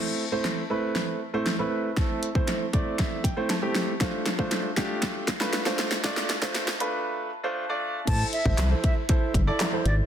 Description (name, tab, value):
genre	dance-pop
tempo	118 BPM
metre	4/4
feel	straight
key	A minor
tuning	A4 = 439 Hz
part	warm concert grand piano	accompaniment	0.0-10.0 s	A3 to A5	-28 LUFS	right 2 dB	sidechain pumping
part	pop drum kit	drums	0.4-10.0 s	crash cymbal, handclaps, hi-hat, kick drum, snare drum	-26 LUFS	equal	none
part	reedy silver concert flute	melody	8.1-10.0 s	D5 to A5	-32 LUFS	equal	sidechain pumping, digital delay
part	chorused synth bass	bass	8.1-10.0 s	G1 to C2	-24 LUFS	equal	sidechain pumping
room	light reverb, digital ambience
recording	dense, heavily limited modern master, high-pass filter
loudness	-24 LUFS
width	side -9 dB against mid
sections	0.0-8.1 A section; 8.1-10.1 B section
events	build-up 0.0-8.1; drum fill 0.0-7.1; filter sweep 0.0-8.1; grand piano fill 2.5-4.0; break 7.1-8.1; drop 8.1-10.1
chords	0.0 Am; 4.0 Dm7; 8.1 Am